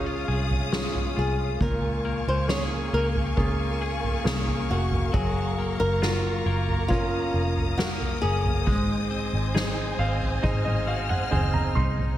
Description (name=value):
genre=pop ballad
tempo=68 BPM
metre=4/4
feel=straight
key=unclear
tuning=A4 = 440 Hz
part: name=bright concert grand piano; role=accompaniment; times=0.0-12.2 s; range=Bb2 to C6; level=-31 LUFS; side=right 2 dB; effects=none
part: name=dark studio string section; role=sustained chords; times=0.0-12.2 s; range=Ab4 to F6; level=-32 LUFS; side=left 1 dB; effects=none
part: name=twelve-string electric guitar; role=arpeggios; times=0.0-12.2 s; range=Ab2 to Ab4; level=-34 LUFS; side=left 6 dB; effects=tape echo
part: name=vintage muted fingered electric bass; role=bass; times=0.0-12.2 s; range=F1 to Db2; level=-28 LUFS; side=equal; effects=none
part: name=soft-mallet drum kit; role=drums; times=0.5-12.2 s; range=kick drum, snare drum, toms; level=-29 LUFS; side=equal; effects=none
part: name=flamenco guitar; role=melody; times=1.2-11.3 s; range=F4 to Db5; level=-30 LUFS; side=equal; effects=none
room=light reverb, studio reverb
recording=none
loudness=-23 LUFS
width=side -12 dB against mid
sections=0.0-12.2 A section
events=grand piano fill 9.6-12.2; drum fill 10.4-12.2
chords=0.0 Db; 1.6 Bbm7/Db; 5.1 Gbmaj7; 8.7 Ab